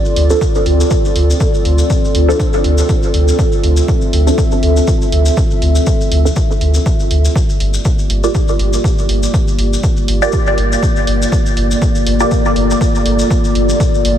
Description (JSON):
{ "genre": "dub techno", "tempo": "121 BPM", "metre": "4/4", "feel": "swing 56% on 16ths", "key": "G dorian", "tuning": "A4 = 439 Hz", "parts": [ { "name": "dark analog pad", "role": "sustained chords", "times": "0.0-14.2 s", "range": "Bb3 to E5", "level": "-18 LUFS", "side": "equal", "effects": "chorus, sidechain pumping" }, { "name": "maracas", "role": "percussion", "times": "0.1-14.0 s", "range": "none", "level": "-27 LUFS", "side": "left 3 dB", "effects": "none" }, { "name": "soft dub sub bass", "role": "bass", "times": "0.2-14.2 s", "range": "G1 to D2", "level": "-14 LUFS", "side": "equal", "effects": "tube saturation, sidechain pumping" }, { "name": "electronic hi-hat", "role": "drums", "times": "0.2-14.2 s", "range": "none", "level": "-23 LUFS", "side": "right 2 dB", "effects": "none" }, { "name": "filtered dub chord stab", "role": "stabs", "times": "0.3-12.5 s", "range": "F3 to D5", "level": "-20 LUFS", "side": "right 1 dB", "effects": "phaser, sidechain pumping, dub echo" }, { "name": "electronic kick drum", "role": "drums", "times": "0.4-13.9 s", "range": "none", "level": "-15 LUFS", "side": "equal", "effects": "none" } ], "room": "light reverb", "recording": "none", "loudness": "-11 LUFS", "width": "side -10 dB against mid", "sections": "0.0-7.4 A section; 7.4-14.2 A section", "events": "filter sweep on synth stab 7.4-14.2", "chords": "0.0 Dm7; 7.4 Gm7", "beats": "0.41 0.91 | 1.40 1.90 2.40 2.89 | 3.39 3.88 4.38 4.88 | 5.37 5.87 6.36 6.86 | 7.36 7.85 8.35 8.84 | 9.34 9.83 10.33 10.83 | 11.32 11.82 12.31 12.81 | 13.30 13.80" }